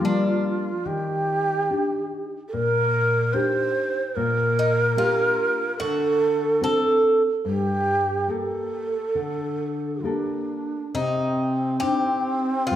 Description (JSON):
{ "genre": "fado-style ballad", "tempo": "71 BPM", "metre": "4/4", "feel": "uneven beats, rubato", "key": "G minor", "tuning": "A4 = 443 Hz", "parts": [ { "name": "Irish bouzouki", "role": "melody", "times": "0.0-12.8 s", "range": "D4 to A4", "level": "-24 LUFS", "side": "equal", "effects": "none" }, { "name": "breathy mellow long shakuhachi", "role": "second line", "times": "0.0-12.8 s", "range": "C4 to C5", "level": "-24 LUFS", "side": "right 2 dB", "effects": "none" }, { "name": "nylon-string guitar", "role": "accompaniment", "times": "0.0-12.8 s", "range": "G2 to A4", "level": "-26 LUFS", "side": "left 3 dB", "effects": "none" } ], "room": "wet recital hall reverb, RT60 1.5 s", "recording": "recorded in a church or concert hall", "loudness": "-21 LUFS", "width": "side -11 dB against mid", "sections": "0.0-10.9 A section; 10.9-12.8 B section", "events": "none", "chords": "0.0 Gm7; 0.9 Ebmaj7; 4.2 Gm; 5.8 D7; 7.5 Gmadd9; 10.9 Cmadd9", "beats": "0.02 | 0.87 1.71 2.52 3.34 | 4.16 4.97 5.79 6.62 | 7.46 8.29 9.14 10.04 | 10.94 11.82 12.69" }